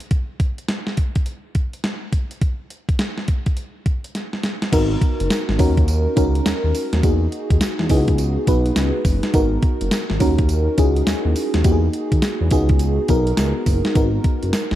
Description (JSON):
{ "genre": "R&B, new jack swing", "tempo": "104 BPM", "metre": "4/4", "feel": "swing 64% on 16ths", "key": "G# minor", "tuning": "A4 = 440 Hz", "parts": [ { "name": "clean 12-bit digital drum machine", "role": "drums", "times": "0.0-14.8 s", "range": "crash cymbal, hi-hat, kick drum, snare drum, tambourine", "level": "-19 LUFS", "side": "equal", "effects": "overdrive" }, { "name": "FM electric piano with soft pad layer", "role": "accompaniment", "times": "4.7-14.8 s", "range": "A#3 to B4", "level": "-21 LUFS", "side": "equal", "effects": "chorus, tremolo" }, { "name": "smooth synth bass", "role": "bass", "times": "4.7-14.8 s", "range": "F#1 to E2", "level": "-20 LUFS", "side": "equal", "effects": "none" } ], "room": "little or no reverb", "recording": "dark, warm production", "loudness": "-17 LUFS", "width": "side -13 dB against mid", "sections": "0.0-4.7 A section; 4.7-14.8 B section", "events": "drum fill 4.1-4.7", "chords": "0.0 N.C.; 4.7 G#m9; 5.6 D#m7; 7.0 Emaj9#11; 7.9 C#7sus4; 9.3 G#m9; 10.2 D#m7; 11.6 Emaj9#11; 12.5 C#7sus4; 14.0 G#m9", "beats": "| 0.11 0.69 1.26 1.84 | 2.42 3.00 3.57 4.15 | 4.72 5.30 5.88 6.46 | 7.03 7.61 8.19 8.76 | 9.34 9.92 10.49 11.07 | 11.65 12.22 12.80 13.38 | 13.96 14.53" }